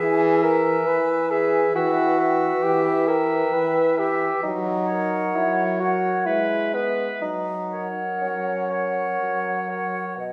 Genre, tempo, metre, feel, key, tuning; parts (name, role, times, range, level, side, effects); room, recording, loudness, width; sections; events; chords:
classical, slow romantic movement for wind quintet; 60-70 BPM; 3/4; rubato; A4 = 441 Hz
mellow hollow concert flute; melody; 0.0-10.3 s; D#5 to G#5; -32 LUFS; equal
clear oboe; second line; 0.0-10.2 s; B4 to E5; -32 LUFS; equal
dark clarinet; accompaniment; 0.0-10.2 s; A#4 to B4; -32 LUFS; equal
warm French horn; accompaniment; 0.0-10.1 s; E3 to G#3; -29 LUFS; equal
mellow bassoon; bass; 0.0-10.3 s; B2 to B4; -25 LUFS; equal
wet recital hall reverb, RT60 1.7 s; recorded in a church or concert hall; -22 LUFS; mono
0.0-10.2 A section
0.0 E; 1.8 Em; 4.4 F#; 6.3 E/G#; 7.2 F#